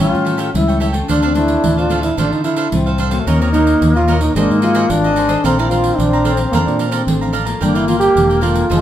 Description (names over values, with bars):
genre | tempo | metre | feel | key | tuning
samba and choro | 110 BPM | 4/4 | straight | unclear | A4 = 440 Hz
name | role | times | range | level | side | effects
mellow trombone | melody | 0.0-8.8 s | Bb3 to G4 | -17 LUFS | right 2 dB | none
bright wooden-headed alto flute | second line | 0.0-8.8 s | A3 to F4 | -19 LUFS | left 4 dB | none
cavaquinho | accompaniment | 0.0-8.8 s | D4 to Bb5 | -23 LUFS | right 4 dB | none
nylon-string guitar | accompaniment | 0.0-8.8 s | A2 to C5 | -24 LUFS | left 4 dB | none
fingered electric bass | bass | 0.0-8.8 s | E1 to D3 | -18 LUFS | equal | none
pandeiro | percussion | 0.0-8.8 s | none | -22 LUFS | right 2 dB | none
room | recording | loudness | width
moderate studio reverb, RT60 0.5 s | minimal, uncompressed stereo recording | -12 LUFS | side -11 dB against mid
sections
0.0-8.8 A section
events
none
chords
0.0 A7b13; 1.1 Dm7; 3.3 Ebm7; 4.4 Ab9; 5.4 Bbmaj9; 7.6 Gm9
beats
0.01 0.55 | 1.10 1.64 2.19 2.73 | 3.27 3.81 4.36 4.90 | 5.44 5.99 6.53 7.07 | 7.62 8.16 8.70